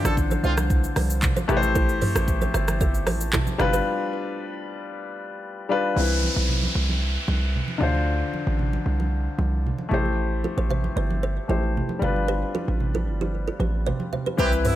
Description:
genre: afrobeats.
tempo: 114 BPM.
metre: 4/4.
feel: straight.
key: unclear.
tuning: A4 = 441 Hz.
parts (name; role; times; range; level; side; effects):
warm horn section; second line; 0.0-0.5, 14.4-14.8 s; C3 to A4; -29 LUFS; right 4 dB; none.
warm grand piano; accompaniment; 0.0-14.8 s; D3 to C5; -27 LUFS; left 4 dB; none.
hard-hitting 808-style bass; bass; 0.0-14.7 s; G1 to D2; -24 LUFS; equal; none.
kalimba; riff; 0.1-3.8, 10.4-14.7 s; E4 to E5; -31 LUFS; right 4 dB; tape echo.
afro-pop drum kit; drums; 0.1-3.9, 14.4-14.8 s; handclaps, hi-hat, kick drum, rim click, shaker, toms; -24 LUFS; equal; none.
congas; percussion; 0.3-14.4 s; none; -32 LUFS; right 3 dB; none.
downlifter; sound effects; 6.0-10.2 s; none; -31 LUFS; right 1 dB; none.
room: studio reverb.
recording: none.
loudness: -21 LUFS.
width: side -13 dB against mid.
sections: 0.0-6.0 A section; 6.0-14.4 B section.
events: break 3.9-6.0.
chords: 0.0 Dm7; 1.5 Am7; 3.6 G7; 6.0 Cmaj7; 7.8 Dm7; 9.9 G7.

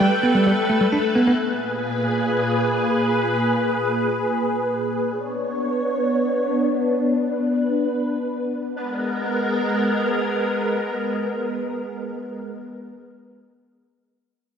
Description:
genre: IDM.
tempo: free time.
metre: none.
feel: none.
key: unclear.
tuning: A4 = 439 Hz.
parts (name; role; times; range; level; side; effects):
warm velvety synth lead; melody; 0.0-0.9 s; G5; -26 LUFS; right 2 dB; chorus, vintage 12-bit sampler grit, analog delay.
soft string machine; sustained chords; 0.0-12.5 s; A#2 to C#5; -21 LUFS; equal; phaser, ensemble chorus.
bell-like tine electric piano; arpeggios; 0.0-1.3 s; G3 to D4; -19 LUFS; right 1 dB; analog delay.
room: wet lush hall reverb, RT60 1.9 s.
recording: dreamy mix soaked in reverb.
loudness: -20 LUFS.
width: side -7 dB against mid.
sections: 0.0-1.4 A section; 1.4-8.8 B section; 8.8-12.5 C section.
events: filter sweep on string machine 1.4-8.8.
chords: 0.0 Gadd9; 1.4 G#madd9; 5.1 Bmadd9; 8.8 G#madd9.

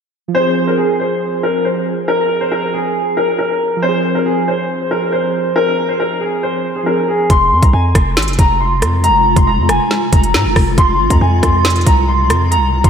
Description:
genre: hip hop, drill.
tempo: 138 BPM.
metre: 4/4.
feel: half-time.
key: F minor.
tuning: A4 = 439 Hz.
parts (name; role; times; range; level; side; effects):
dark concert grand piano; melody; 0.3-12.9 s; Ab4 to C6; -15 LUFS; equal; lush chorus, low-pass filter, ping-pong delay.
warbly lo-fi synth keys; accompaniment; 0.3-7.3 s; F3 to Ab4; -20 LUFS; right 1 dB; chorus, low-pass filter.
granular cloud pad; sustained chords; 8.1-12.9 s; C3 to F4; -20 LUFS; left 2 dB; built-in reverb, lush chorus.
distorted 808-style bass; bass; 7.3-12.9 s; F1 to Ab2; -15 LUFS; equal; distortion.
drill drum kit; drums; 7.3-12.9 s; hi-hat, kick drum, rim click, snare drum; -14 LUFS; equal; none.
room: wet lush hall reverb, RT60 1.9 s.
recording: dreamy mix soaked in reverb.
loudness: -12 LUFS.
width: side -7 dB against mid.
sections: 0.3-7.3 A section; 7.3-12.9 B section.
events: none.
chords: 0.3 Fm.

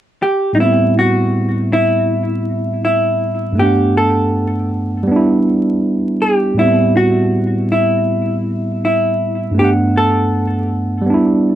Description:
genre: hip hop.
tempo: 80 BPM.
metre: 4/4.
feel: swing 60% on 16ths.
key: A dorian.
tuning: A4 = 438 Hz.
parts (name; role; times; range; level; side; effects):
vintage hollow-body jazz guitar; melody; 0.2-11.6 s; D#4 to A4; -16 LUFS; equal; low-pass filter, tape echo.
tine electric piano; accompaniment; 0.5-11.6 s; G2 to F#5; -15 LUFS; right 1 dB; overdrive, tape saturation, low-pass filter.
room: moderate small room reverb, RT60 0.5 s.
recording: vinyl crackle.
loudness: -13 LUFS.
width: side -12 dB against mid.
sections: 0.6-11.6 A section.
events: none.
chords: 0.0 N.C.; 0.6 Am9; 3.6 Gmaj9; 5.1 G69; 6.6 Am9; 9.6 Gmaj9.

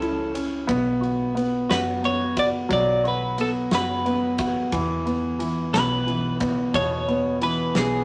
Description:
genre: six-eight pop ballad.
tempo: 59 BPM (dotted quarters).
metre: 6/8.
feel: straight.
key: unclear.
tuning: A4 = 440 Hz.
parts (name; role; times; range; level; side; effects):
twelve-string electric guitar; melody; 0.0-8.0 s; G#4 to D5; -26 LUFS; equal; none.
warm grand piano; accompaniment; 0.0-8.0 s; B2 to F#4; -26 LUFS; equal; none.
vintage muted fingered electric bass; bass; 0.0-8.0 s; F#1 to E2; -34 LUFS; equal; none.
huge arena drum kit; drums; 0.0-7.9 s; kick drum, ride cymbal, snare drum; -34 LUFS; equal; none.
room: moderate studio reverb, RT60 0.6 s.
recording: none.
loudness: -24 LUFS.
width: mono.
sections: 0.0-8.0 A section.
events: none.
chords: 0.0 F#m7; 0.7 B5; 4.7 E5.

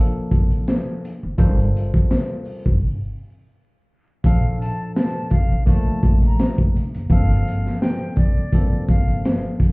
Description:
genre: hip hop, boom-bap hip-hop.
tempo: 84 BPM.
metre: 4/4.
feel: swing 56% on 16ths.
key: Bb major.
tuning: A4 = 440 Hz.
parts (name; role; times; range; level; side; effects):
tine electric piano; accompaniment; 0.0-9.7 s; G2 to C5; -26 LUFS; equal; medium stereo tremolo, high-pass filter, low-pass filter.
upright bass; bass; 0.2-9.2 s; Gb1 to Bb1; -20 LUFS; equal; none.
crunchy breakbeat drum kit; drums; 0.3-9.7 s; hi-hat, kick drum, snare drum; -19 LUFS; equal; none.
breathy silver concert flute; melody; 4.2-9.2 s; D5 to Bb5; -32 LUFS; left 1 dB; high-pass filter, low-pass filter, tape echo.
room: light reverb.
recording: heard muffled through a wall, club reverb, vinyl crackle, EQ.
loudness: -17 LUFS.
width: side -29 dB against mid.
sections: 0.0-4.2 A section; 4.2-9.7 B section.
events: break 2.8-4.2.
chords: 0.0 Bbmaj7; 1.4 Gm11; 2.8 N.C.; 4.2 Bbmaj7; 7.1 Gm11.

